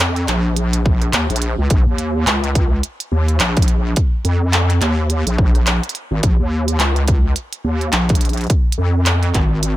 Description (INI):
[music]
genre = glitch hop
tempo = 106 BPM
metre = 4/4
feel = swing 59% on 16ths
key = Bb minor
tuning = A4 = 442 Hz
[part]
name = wobble bass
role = bass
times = 0.0-9.8 s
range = Ab1 to F2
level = -16 LUFS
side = equal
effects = chorus, tube saturation
[part]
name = glitchy drum kit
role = drums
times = 0.0-9.8 s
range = handclaps, hi-hat, rim click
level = -20 LUFS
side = right 1 dB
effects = overdrive
[part]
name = electronic kick drum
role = drums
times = 0.9-9.5 s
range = none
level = -15 LUFS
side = equal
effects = none
[sound]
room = little or no reverb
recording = none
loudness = -14 LUFS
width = side -15 dB against mid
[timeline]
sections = 0.0-9.8 A section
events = none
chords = none